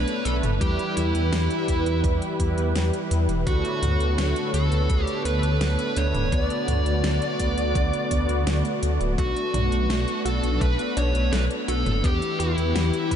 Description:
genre	synthwave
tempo	84 BPM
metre	4/4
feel	straight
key	B minor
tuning	A4 = 437 Hz
part	dark smooth lead guitar	melody	0.0-13.2 s	E4 to D5	-28 LUFS	equal	overdrive, tape echo
part	warm analog pad	sustained chords	0.0-13.2 s	D3 to C#5	-29 LUFS	equal	chorus, sidechain pumping
part	mellow synth brass	stabs	0.0-9.1 s	G3 to D5	-31 LUFS	right 2 dB	chorus, ping-pong delay
part	dark detuned saw bass	bass	0.0-13.2 s	D1 to E2	-24 LUFS	equal	sidechain pumping
part	pop drum kit	drums	0.1-13.2 s	hi-hat, snare drum, toms	-33 LUFS	equal	studio ambience
part	electronic kick drum	drums	0.6-13.2 s	none	-24 LUFS	equal	studio ambience
part	wide unison pluck	arpeggios	9.2-13.2 s	A3 to B4	-33 LUFS	equal	cassette tape, ping-pong delay
room	moderate huge ambient reverb, RT60 8.4 s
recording	dreamy mix soaked in reverb, nothing above 10.7 kHz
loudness	-21 LUFS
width	side -9 dB against mid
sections	0.0-13.2 A section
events	none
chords	0.0 Bm7; 0.6 Em; 3.5 Bm7/D; 6.3 D6; 9.2 Bm7; 12.0 Em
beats	| 0.61 1.33 2.04 2.76 | 3.47 4.18 4.90 5.61 | 6.33 7.04 7.76 8.47 | 9.18 9.90 10.61 11.33 | 12.04 12.76

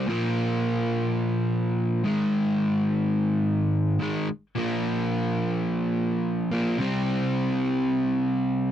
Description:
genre	rock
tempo	107 BPM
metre	4/4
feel	straight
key	unclear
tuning	A4 = 439 Hz
part	crunchy overdriven guitar	solo	0.0-8.7 s	Ab2 to C4	-23 LUFS	equal	none
room	moderate booth ambience, RT60 0.2 s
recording	dry, close 1970s-style studio recording, faint mains hum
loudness	-23 LUFS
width	side -10 dB against mid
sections	0.0-8.7 A section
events	none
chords	0.1 Bb5; 2.0 Ab5; 4.6 Bb5; 6.8 C5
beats	| 0.08 0.64 1.20 1.76 | 2.33 2.88 3.45 4.01 | 4.57 5.13 5.69 6.25 | 6.81 7.37 7.92 8.48

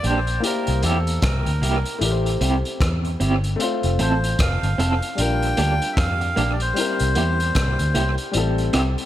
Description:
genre	lovers rock reggae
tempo	76 BPM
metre	4/4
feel	swing 60% on 16ths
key	unclear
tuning	A4 = 440 Hz
part	melodica	melody	0.0-8.2 s	A4 to G5	-26 LUFS	equal	tape echo
part	warm grand piano	accompaniment	0.0-9.1 s	G3 to D5	-27 LUFS	left 4 dB	none
part	electric guitar through a small old amp	stabs	0.0-8.9 s	Bb3 to A4	-26 LUFS	right 2 dB	tremolo, tape echo
part	vintage muted fingered electric bass	bass	0.0-8.9 s	F1 to F2	-22 LUFS	equal	none
part	crunchy breakbeat drum kit	drums	0.0-9.1 s	hi-hat, kick drum, rim click	-26 LUFS	equal	gated reverb, tape echo
room	light reverb, studio reverb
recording	none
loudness	-18 LUFS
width	side -12 dB against mid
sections	0.0-9.1 A section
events	none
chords	0.4 C7; 2.0 Am7; 3.6 Fmaj7; 5.2 Bb6; 6.8 C7; 8.3 Am7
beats	| 0.44 1.23 2.02 2.81 | 3.60 4.39 5.18 5.97 | 6.76 7.55 8.35

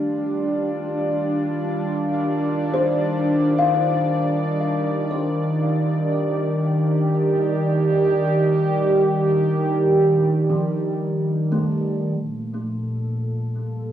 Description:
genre	ambient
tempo	59 BPM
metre	4/4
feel	straight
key	unclear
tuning	A4 = 440 Hz
part	warm analog pad	sustained chords	0.0-13.9 s	Bb2 to D5	-20 LUFS	right 1 dB	chorus, plate reverb
part	kalimba	arpeggios	0.0-13.9 s	F3 to F5	-26 LUFS	left 3 dB	tape echo, plate reverb
part	bowed-like drone	drone	0.0-12.3 s	G3 to D4	-26 LUFS	equal	built-in reverb, plate reverb
room	wet booth ambience, RT60 0.2 s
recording	home recording on cassette, small room reverb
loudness	-19 LUFS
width	side -10 dB against mid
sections	0.0-12.2 A section; 12.2-13.9 B section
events	fade-in on analog synth pad 0.0-12.2; fade-out on synth drone 0.0-12.2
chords	0.0 Ebmaj9; 12.2 Gm9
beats	1.00 2.02 3.03 | 4.05 5.07 6.08 7.10 | 8.12 9.13 10.15 11.17 | 12.19 13.20

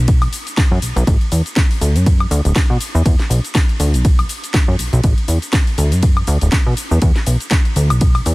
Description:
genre	filtered disco house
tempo	121 BPM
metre	4/4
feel	swing 57% on 16ths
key	unclear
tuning	A4 = 438 Hz
part	plucky analog bass	bass	0.0-8.3 s	D1 to B2	-14 LUFS	equal	sidechain pumping
part	electronic kick drum	drums	0.1-8.1 s	none	-14 LUFS	equal	overdrive
part	house drum kit	drums	0.1-8.3 s	hi-hat, ride cymbal, shaker, snare drum, woodblock	-22 LUFS	left 1 dB	overdrive, sidechain pumping on hats, sidechain pumping on perc, sidechain pumping on cymbals
room	digital ambience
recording	none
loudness	-13 LUFS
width	side -22 dB against mid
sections	0.0-8.3 A section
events	none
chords	none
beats	0.08 0.57 | 1.07 1.57 2.06 2.56 | 3.05 3.55 4.05 4.54 | 5.04 5.53 6.03 6.53 | 7.02 7.52 8.01

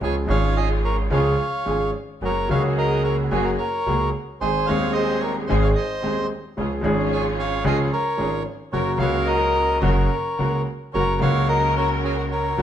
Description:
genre	tango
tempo	110 BPM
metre	4/4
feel	rubato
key	F# major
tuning	A4 = 440 Hz
part	bandoneon	melody	0.0-12.6 s	C#4 to E#5	-24 LUFS	right 1 dB	none
part	clear concert grand piano	accompaniment	0.0-12.6 s	D#1 to G#4	-23 LUFS	left 1 dB	none
part	muted studio string section	stabs	0.0-12.6 s	A#3 to A#4	-28 LUFS	right 1 dB	none
part	upright bass	bass	0.0-12.6 s	F#1 to D#2	-27 LUFS	right 1 dB	none
room	wet stone room reverb, RT60 1.2 s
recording	band playing live in one room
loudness	-19 LUFS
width	side -10 dB against mid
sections	0.0-10.9 A section; 10.9-12.6 A section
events	none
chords	0.0 C#; 2.2 F#add9; 4.4 G#; 6.6 C#; 8.7 F#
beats	| 0.01 0.56 1.11 1.67 | 2.22 2.77 3.32 3.87 | 4.41 4.95 5.49 6.03 | 6.57 7.11 7.65 8.19 | 8.73 9.28 9.83 10.39 | 10.95 11.50 12.04 12.58

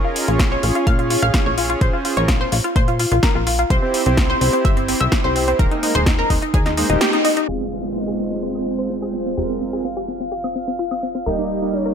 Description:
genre	progressive house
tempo	127 BPM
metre	4/4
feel	straight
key	F minor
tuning	A4 = 438 Hz
part	analog pluck	arpeggios	0.0-11.9 s	C4 to F5	-22 LUFS	left 1 dB	wide subtle chorus, sidechain pumping, dub echo
part	soft supersaw	stabs	0.0-11.9 s	G3 to Db5	-24 LUFS	right 2 dB	sidechain pumping, dub echo
part	deep house drum kit	drums	0.2-11.0 s	hi-hat, snare drum, woodblock	-23 LUFS	left 1 dB	overdrive, low-pass filter on hats, low-pass filter on snare, low-pass filter on perc, low-pass filter on room
part	plucky analog bass	bass	0.3-11.9 s	Eb1 to Bb2	-23 LUFS	equal	sidechain pumping
part	electronic kick drum	drums	0.4-6.6 s	none	-18 LUFS	equal	none
part	wide unison lead	melody	7.5-11.9 s	C5 to F5	-27 LUFS	equal	sidechain pumping, dub echo
part	tambourine	percussion	7.5-11.8 s	none	-71 LUFS	equal	none
part	downlifter	sound effects	7.5-11.3 s	none	-33 LUFS	left 2 dB	none
room	light reverb, digital ambience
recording	low-pass filter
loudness	-16 LUFS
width	side -7 dB against mid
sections	0.0-7.5 A section; 7.5-11.9 B section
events	band accent 7.0; filter sweep on drum 7.5-11.9; filter sweep on synth pluck 7.5-11.9; filter sweep 7.5-11.9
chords	0.0 Bbm7; 3.7 C; 5.6 Ebsus4; 7.5 Fm; 11.3 Eb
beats	0.40 0.87 1.34 | 1.81 2.29 2.76 3.23 | 3.70 4.18 4.65 5.12 | 5.59 6.07 6.54 7.01 | 7.48 7.96 8.43 8.90 | 9.37 9.85 10.32 10.79 | 11.26 11.74

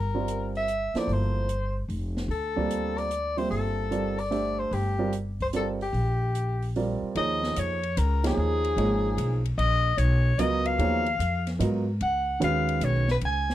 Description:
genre	modal jazz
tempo	148 BPM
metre	3/4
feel	swing 67% on 8ths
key	G dorian, Eb minor from 7.2 s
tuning	A4 = 440 Hz
part	warm soprano saxophone	melody	0.0-13.5 s	G4 to Ab5	-28 LUFS	left 2 dB	none
part	upright bass	bass	0.0-13.5 s	F1 to Ab2	-27 LUFS	equal	none
part	warm grand piano	accompaniment	0.1-13.0 s	Eb3 to E5	-29 LUFS	right 4 dB	none
part	open jazz drum kit	drums	0.3-13.5 s	hi-hat, kick drum, ride cymbal, snare drum	-40 LUFS	equal	none
room	small room ambience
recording	dry, close 1970s-style studio recording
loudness	-24 LUFS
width	side -13 dB against mid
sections	0.0-7.2 A section; 7.2-13.5 B section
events	band accent 8.2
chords	0.0 Gm11; 5.9 Bb69; 7.2 Eb9sus4; 12.0 Db9sus4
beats	0.28 0.68 | 1.08 1.49 1.89 | 2.30 2.70 3.11 | 3.51 3.92 4.32 | 4.73 5.13 5.54 | 5.94 6.35 6.75 | 7.16 7.56 7.97 | 8.37 8.78 9.18 | 9.58 9.99 10.39 | 10.80 11.20 11.61 | 12.01 12.41 12.82 | 13.22

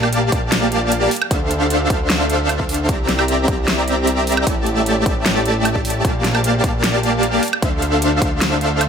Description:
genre	future bass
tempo	152 BPM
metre	4/4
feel	half-time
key	D minor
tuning	A4 = 441 Hz
part	dense compressed supersaw	riff	0.0-8.9 s	A3 to Bb5	-18 LUFS	equal	cassette tape, sidechain pumping, tape echo
part	fat analog bass	bass	0.0-8.9 s	A1 to D2	-22 LUFS	equal	sidechain pumping
part	big-room dance drum kit	drums	0.0-8.9 s	hi-hat, snare drum, woodblock	-22 LUFS	equal	overdrive
part	electronic kick drum	drums	0.3-8.3 s	none	-20 LUFS	equal	overdrive
room	light reverb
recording	none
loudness	-15 LUFS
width	side -7 dB against mid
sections	0.0-8.9 A section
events	none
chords	0.0 Gm7/Bb; 1.1 Dm7; 2.9 C7; 4.5 A7sus4; 6.0 Gm7/Bb; 7.4 Dm7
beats	0.13 0.52 0.92 | 1.31 1.71 2.10 2.50 | 2.89 3.28 3.68 4.07 | 4.47 4.86 5.26 5.65 | 6.05 6.44 6.84 7.23 | 7.63 8.02 8.42 8.81

